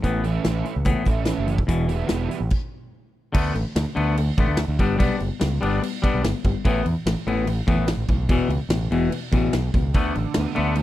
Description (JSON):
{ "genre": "indie rock", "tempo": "145 BPM", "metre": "4/4", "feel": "straight", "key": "unclear", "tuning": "A4 = 442 Hz", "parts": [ { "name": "twangy electric guitar", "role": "riff", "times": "0.0-10.8 s", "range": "E2 to D4", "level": "-25 LUFS", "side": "left 3 dB", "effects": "none" }, { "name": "growling fingered electric bass", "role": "bass", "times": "0.0-10.8 s", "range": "E1 to E2", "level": "-24 LUFS", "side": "equal", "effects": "overdrive" }, { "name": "big rock drum kit", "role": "drums", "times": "0.0-10.8 s", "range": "crash cymbal, hi-hat, kick drum, snare drum", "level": "-25 LUFS", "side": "equal", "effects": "none" }, { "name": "overdriven semi-hollow guitar", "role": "riff", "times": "0.2-2.4, 10.0-10.8 s", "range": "D3 to E4", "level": "-28 LUFS", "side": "right 7 dB", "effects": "analog chorus, slapback echo" } ], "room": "little or no reverb", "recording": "dry, close 1970s-style studio recording", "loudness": "-20 LUFS", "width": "side -14 dB against mid", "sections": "0.0-3.3 A section; 3.3-10.8 B section", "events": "stop 2.5-3.3", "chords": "0.0 Aadd9; 1.7 Em; 3.3 D5; 4.8 G; 6.6 Asus2; 8.3 E5; 9.9 D5" }